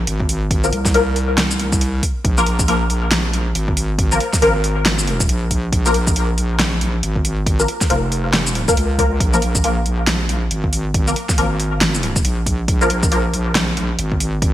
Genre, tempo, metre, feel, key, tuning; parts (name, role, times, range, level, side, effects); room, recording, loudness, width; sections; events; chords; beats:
deep dubstep; 138 BPM; 4/4; swing 60% on 16ths, half-time; A4 = 439 Hz
filtered dub chord stab; stabs; 0.0-14.5 s; F3 to Bb4; -20 LUFS; left 2 dB; phaser, ensemble chorus, dub echo
wobble bass; bass; 0.0-14.5 s; F1 to Db2; -20 LUFS; equal; chorus
deep house drum kit; drums; 0.1-14.5 s; hi-hat, shaker, snare drum; -20 LUFS; equal; gated reverb
electronic kick drum; drums; 0.2-14.5 s; -19 LUFS; equal
light reverb; bright 1980s-style digital production; -15 LUFS; side -13 dB against mid
0.0-14.5 A section
0.0 Bb5
0.07 | 0.51 0.94 1.38 1.81 | 2.25 2.68 3.12 3.55 | 3.99 4.42 4.86 5.29 | 5.73 6.16 6.60 7.03 | 7.47 7.90 8.34 8.77 | 9.21 9.64 10.07 10.51 | 10.94 11.38 11.81 12.25 | 12.68 13.12 13.55 13.99 | 14.42